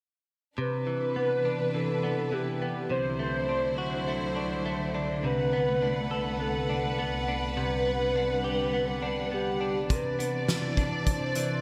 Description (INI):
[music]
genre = dream pop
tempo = 103 BPM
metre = 4/4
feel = straight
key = C lydian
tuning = A4 = 440 Hz
[part]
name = warm velvety synth lead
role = melody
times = 0.6-11.6 s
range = G4 to C5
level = -33 LUFS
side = equal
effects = chorus, digital delay
[part]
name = warm studio string section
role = sustained chords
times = 0.6-11.6 s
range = C2 to F#5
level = -34 LUFS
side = equal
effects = none
[part]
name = direct-recorded clean electric guitar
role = arpeggios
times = 0.6-11.6 s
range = C3 to A4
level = -35 LUFS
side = equal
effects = analog chorus, digital delay
[part]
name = loose indie drum kit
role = drums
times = 9.9-11.5 s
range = hi-hat, kick drum, snare drum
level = -31 LUFS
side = equal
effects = gated reverb
[sound]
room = moderate plate reverb, RT60 2.2 s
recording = bright 1980s-style digital production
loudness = -29 LUFS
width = mono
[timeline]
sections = 0.6-9.9 A section; 9.9-11.6 B section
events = none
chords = 0.6 Cmaj9; 2.9 D9/C; 5.2 Bm7/C; 7.6 Gmaj7/C; 9.9 Cmaj9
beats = | 0.58 1.16 1.74 2.33 | 2.91 3.49 4.08 4.66 | 5.24 5.82 6.41 6.99 | 7.57 8.15 8.73 9.32 | 9.90 10.48 11.06